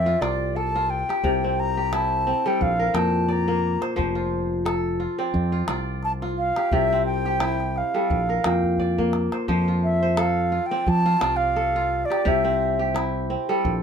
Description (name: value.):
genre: west african traditional, West African string and xylophone music.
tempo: 87 BPM.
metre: 4/4.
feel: swing 55% on 16ths.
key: F major.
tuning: A4 = 440 Hz.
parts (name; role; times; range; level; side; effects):
bright baroque flute; melody; 0.0-13.0 s; D5 to Bb5; -24 LUFS; equal; none.
kora; arpeggios; 0.0-13.8 s; Bb2 to G5; -25 LUFS; equal; none.
fingered electric bass; bass; 0.0-13.8 s; F1 to F3; -26 LUFS; equal; none.
calabash; percussion; 0.2-13.8 s; none; -30 LUFS; equal; none.
room: moderate studio reverb, RT60 0.6 s.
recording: minimal, uncompressed stereo recording.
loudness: -20 LUFS.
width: side -7 dB against mid.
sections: 0.0-9.5 A section; 9.5-13.8 B section.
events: drum fill 8.6-9.5; flute solo 9.5-13.8.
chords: 0.0 F; 1.2 C; 2.6 Bb; 4.0 F; 6.7 C; 8.1 Bb; 9.5 F; 12.3 C.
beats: 0.56 | 1.24 1.93 2.61 3.30 | 3.98 4.67 5.36 6.04 | 6.73 7.42 8.11 8.80 | 9.49 10.18 10.87 11.57 | 12.26 12.95 13.65.